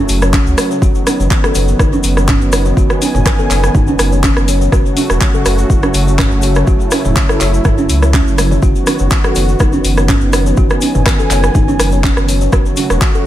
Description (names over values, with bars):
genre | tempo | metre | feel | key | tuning
afro house | 123 BPM | 4/4 | swing 53% on 16ths | unclear | A4 = 440 Hz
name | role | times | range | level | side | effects
warm analog pad | sustained chords | 0.0-13.3 s | C#3 to G#5 | -19 LUFS | right 1 dB | chorus, sidechain pumping
kalimba | arpeggios | 0.0-13.2 s | C#4 to C#5 | -18 LUFS | equal | sidechain pumping, dub echo
warm sub bass | bass | 0.0-13.0 s | E1 to C#2 | -15 LUFS | equal | sidechain pumping
deep house drum kit | drums | 0.1-13.1 s | handclaps, hi-hat, rim click, toms | -17 LUFS | right 1 dB | overdrive
tube shaker | percussion | 0.1-13.2 s | none | -27 LUFS | left 5 dB | dub echo
electronic kick drum | drums | 0.3-13.1 s | none | -14 LUFS | equal | overdrive
room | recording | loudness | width
little or no reverb | echo-heavy mix | -10 LUFS | side -13 dB against mid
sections
0.0-13.3 A section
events
drum fill 8.4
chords
0.0 F#m; 0.8 B/F#; 4.7 F#m; 8.6 B/F#; 12.5 F#m